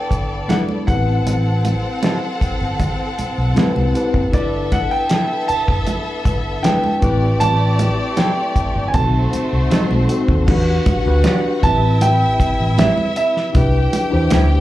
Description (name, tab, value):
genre	lush 1970s-style soul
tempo	78 BPM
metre	4/4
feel	straight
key	unclear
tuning	A4 = 436 Hz
part	warm concert grand piano	melody	0.0-14.3 s	D5 to A5	-21 LUFS	right 2 dB	slapback echo
part	warm studio violin section	second line	0.0-14.6 s	A3 to G5	-25 LUFS	left 1 dB	slapback echo
part	mellow tine electric piano	accompaniment	0.0-14.6 s	B3 to C5	-22 LUFS	left 2 dB	medium stereo tremolo
part	vintage muted fingered electric bass	bass	0.1-14.6 s	F#1 to E2	-18 LUFS	equal	none
part	cloth-damped thuddy drum kit	drums	0.1-14.5 s	crash cymbal, hi-hat, kick drum, snare drum	-19 LUFS	equal	none
part	mellow electric guitar	riff	0.5-14.5 s	E3 to A4	-23 LUFS	right 3 dB	slapback echo
part	congas	percussion	0.5-14.5 s	none	-25 LUFS	right 3 dB	none
room	light reverb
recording	live gig heard through the venue's PA, club ambience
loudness	-15 LUFS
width	side -15 dB against mid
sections	0.0-10.5 A section; 10.5-14.6 B section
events	none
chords	0.0 G69; 0.9 Am7; 4.3 G69; 7.0 Am7; 8.9 B7b9; 10.5 Em7; 11.6 Am7; 13.6 Cmaj7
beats	0.49 | 1.26 2.03 2.80 3.57 | 4.34 5.11 5.87 6.64 | 7.41 8.18 8.95 9.71 | 10.48 11.25 12.02 12.78 | 13.55 14.32